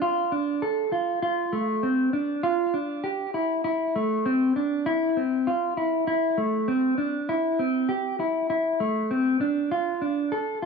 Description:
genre	dream pop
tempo	99 BPM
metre	4/4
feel	straight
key	unclear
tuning	A4 = 437 Hz
part	mellow electric guitar	solo	0.0-10.7 s	A3 to A4	-23 LUFS	equal	wide subtle chorus, tape echo
room	wet studio reverb, RT60 0.7 s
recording	none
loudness	-23 LUFS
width	side -5 dB against mid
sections	0.0-10.7 A section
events	none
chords	none

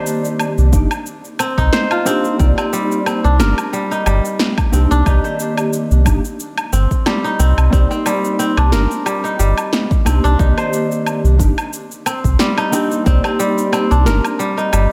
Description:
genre	organic downtempo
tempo	90 BPM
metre	4/4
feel	swing 55% on 16ths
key	C minor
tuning	A4 = 440 Hz
part	mellow electric guitar	accompaniment	0.0-14.2 s	Eb3 to D5	-23 LUFS	equal	ensemble chorus, sidechain pumping, delay
part	kora	arpeggios	0.0-14.9 s	G3 to C5	-22 LUFS	equal	delay
part	electronic cabasa, woodblock and snare drum	drums	0.1-14.9 s	none	-24 LUFS	equal	overdrive
part	round analog bass	bass	0.6-14.9 s	G1 to C2	-15 LUFS	equal	sidechain pumping
part	electronic kick drum	drums	0.7-13.2 s	none	-19 LUFS	equal	overdrive
room	moderate concert hall reverb, RT60 1.8 s, digital ambience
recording	none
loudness	-16 LUFS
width	mono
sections	0.0-14.9 A section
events	none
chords	0.0 Cm7

